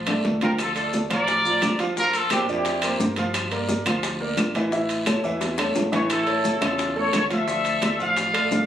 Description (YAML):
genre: latin, salsa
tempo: 174 BPM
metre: 4/4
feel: straight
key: D minor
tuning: A4 = 442 Hz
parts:
  - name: sub bass with octave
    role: bass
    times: 0.0-8.7 s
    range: G1 to G2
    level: -33 LUFS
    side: equal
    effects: none
  - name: clear concert grand piano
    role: accompaniment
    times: 0.1-8.6 s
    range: C#3 to F5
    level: -26 LUFS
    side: right 1 dB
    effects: none
  - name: bongos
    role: percussion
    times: 0.1-8.7 s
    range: none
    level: -31 LUFS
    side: left 3 dB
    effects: none
  - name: claves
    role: percussion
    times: 0.1-8.5 s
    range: none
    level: -33 LUFS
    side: left 1 dB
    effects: none
  - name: congas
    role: percussion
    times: 0.1-8.7 s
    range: none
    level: -30 LUFS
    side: equal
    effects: none
  - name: timbales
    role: percussion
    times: 0.1-8.5 s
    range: none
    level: -30 LUFS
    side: right 2 dB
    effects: none
  - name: guiro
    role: percussion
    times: 0.2-8.7 s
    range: none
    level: -37 LUFS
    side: left 2 dB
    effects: none
  - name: clear trumpet section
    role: melody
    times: 0.4-3.0, 5.9-8.7 s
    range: D4 to F5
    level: -23 LUFS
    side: left 1 dB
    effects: none
  - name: maracas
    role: percussion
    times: 0.6-8.7 s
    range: none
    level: -39 LUFS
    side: left 3 dB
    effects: none
room: moderate large studio reverb, RT60 0.8 s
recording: recorded on a phone in the room, club reverb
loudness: -20 LUFS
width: side -10 dB against mid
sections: 0.0-8.7 A section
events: drum fill 0.0-0.6, 5.2-6.1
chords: 0.0 Dm; 2.0 Bbadd9; 3.3 Gm7; 4.7 A; 7.5 Dm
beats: 0.25 | 0.59 0.94 1.28 1.63 | 1.97 2.31 2.66 3.00 | 3.35 3.69 4.04 4.38 | 4.72 5.07 5.41 5.76 | 6.10 6.45 6.79 7.14 | 7.48 7.83 8.17 8.52